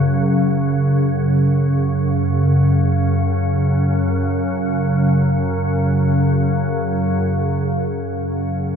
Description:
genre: ambient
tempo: free time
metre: none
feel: none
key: unclear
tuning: A4 = 440 Hz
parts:
  - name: organ-like drone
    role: solo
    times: 0.0-8.8 s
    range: F#2 to C#3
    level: -15 LUFS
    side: equal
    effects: ensemble chorus, built-in reverb
room: wet cathedral reverb, RT60 7.2 s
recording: in a vast, echoing space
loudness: -16 LUFS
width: side -7 dB against mid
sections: 0.0-7.2 A section; 7.2-8.8 A section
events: none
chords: 0.0 F#5

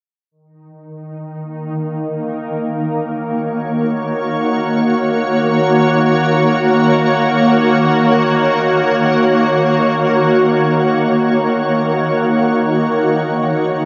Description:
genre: ambient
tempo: free time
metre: none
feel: none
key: Eb minor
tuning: A4 = 440 Hz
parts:
  - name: shimmering ambient pad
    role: solo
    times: 1.1-13.9 s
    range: Eb3 to Db5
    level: -15 LUFS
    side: equal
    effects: chorus, built-in reverb, tape echo
room: wet huge ambient reverb, RT60 7.6 s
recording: dark, warm production, nothing above 7.5 kHz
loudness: -15 LUFS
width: mono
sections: 0.3-13.9 A section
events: none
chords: 0.3 Ebm7

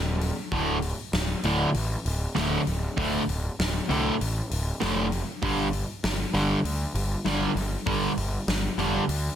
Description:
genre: hard rock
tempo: 98 BPM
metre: 4/4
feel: straight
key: D phrygian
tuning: A4 = 440 Hz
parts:
  - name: fuzz picked electric bass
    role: bass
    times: 0.0-9.3 s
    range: D1 to D2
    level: -29 LUFS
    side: equal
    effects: overdrive
  - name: huge arena drum kit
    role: drums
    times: 0.2-9.2 s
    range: hi-hat, kick drum, snare drum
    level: -31 LUFS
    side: left 1 dB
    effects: none
  - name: overdriven semi-hollow guitar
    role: riff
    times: 0.5-9.0 s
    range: D2 to G3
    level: -25 LUFS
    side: right 1 dB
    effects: none
room: light reverb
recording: dense, heavily limited modern master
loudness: -24 LUFS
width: side -10 dB against mid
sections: 0.0-9.4 A section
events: none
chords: 0.0 N.C.; 0.5 D5; 5.4 G5

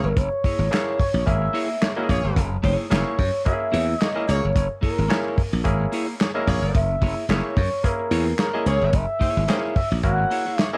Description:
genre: funk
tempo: 109 BPM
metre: 4/4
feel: swing 56% on 16ths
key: unclear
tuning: A4 = 440 Hz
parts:
  - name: expressive synth lead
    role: melody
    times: 0.0-10.8 s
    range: Bb4 to Gb5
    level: -28 LUFS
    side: equal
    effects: chorus
  - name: warm horn section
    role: second line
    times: 0.0-10.7 s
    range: Bb3 to Db5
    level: -32 LUFS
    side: equal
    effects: none
  - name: overdriven clav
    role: stabs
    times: 0.0-10.8 s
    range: Bb3 to Bb4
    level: -32 LUFS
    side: equal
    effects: tape echo
  - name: glassy slap bass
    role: bass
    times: 0.0-10.2 s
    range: Gb1 to Gb2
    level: -25 LUFS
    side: equal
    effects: none
  - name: clean electric guitar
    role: accompaniment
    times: 0.1-10.8 s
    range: Bb3 to Eb5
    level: -33 LUFS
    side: equal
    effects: spring reverb
  - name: warm soul drum kit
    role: drums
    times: 0.2-10.7 s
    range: handclaps, hi-hat, kick drum, snare drum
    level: -26 LUFS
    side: equal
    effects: none
room: light reverb, small room ambience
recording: dark, warm production, vinyl crackle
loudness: -22 LUFS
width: mono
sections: 0.0-10.8 A section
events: none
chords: 0.0 Gb9

